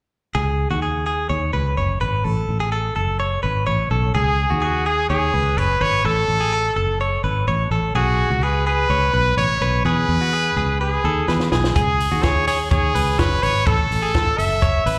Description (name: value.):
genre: jangly indie pop.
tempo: 126 BPM.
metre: 4/4.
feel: straight.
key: C# minor.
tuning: A4 = 439 Hz.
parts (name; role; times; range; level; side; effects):
direct-recorded clean electric guitar; arpeggios; 0.3-15.0 s; F#4 to C#5; -26 LUFS; equal; slapback echo, tape echo.
fingered electric bass; bass; 0.3-15.0 s; F#1 to E2; -24 LUFS; equal; none.
brilliant trumpet; melody; 4.2-15.0 s; F#4 to E5; -23 LUFS; equal; slapback echo, tape echo.
compact cocktail drum kit; drums; 11.3-15.0 s; hi-hat, kick drum, snare drum; -25 LUFS; equal; slapback echo.
room: light reverb, small room ambience.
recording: live gig heard through the venue's PA, club reverb.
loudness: -20 LUFS.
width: mono.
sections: 0.3-4.2 A section; 4.2-15.0 B section.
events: drum fill 11.3-11.8.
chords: 0.3 C#sus2; 2.2 A; 4.2 C#sus2; 6.0 A; 7.9 B5; 9.9 E; 11.8 C#sus2; 13.7 A.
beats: | 0.35 0.82 1.30 1.77 | 2.25 2.73 3.20 3.67 | 4.15 4.62 5.10 5.57 | 6.05 6.52 7.00 7.47 | 7.95 8.43 8.90 9.38 | 9.85 10.33 10.80 11.28 | 11.76 12.23 12.71 13.19 | 13.67 14.14 14.62.